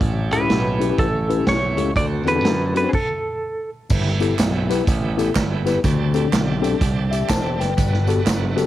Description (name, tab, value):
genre	uptempo gospel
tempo	124 BPM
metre	4/4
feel	swing 64% on 8ths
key	G major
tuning	A4 = 441 Hz
part	mellow tine electric piano	accompaniment	0.0-8.7 s	G2 to A5	-22 LUFS	left 5 dB	medium stereo tremolo, cassette tape
part	bright tonewheel organ	sustained chords	0.0-8.7 s	D3 to A4	-30 LUFS	right 8 dB	slow rotary speaker, overdrive, cassette tape
part	slap bass	bass	0.0-8.7 s	E1 to F#2	-23 LUFS	right 1 dB	none
part	swinging big-band drum kit	drums	0.0-8.7 s	crash cymbal, hi-hat, kick drum, snare drum	-23 LUFS	right 1 dB	cassette tape
part	semi-hollow electric guitar	melody	0.3-3.7 s	Ab4 to D5	-22 LUFS	right 1 dB	tremolo, cassette tape
part	tambourine and handclaps	percussion	3.9-8.7 s	none	-33 LUFS	right 4 dB	none
room	studio reverb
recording	home recording on cassette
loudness	-17 LUFS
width	side -13 dB against mid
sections	0.0-3.9 A section; 3.9-8.7 B section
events	stop 2.9-3.9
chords	0.0 A7; 2.0 D7; 3.9 G69; 5.8 D7sus4; 7.8 Gmaj9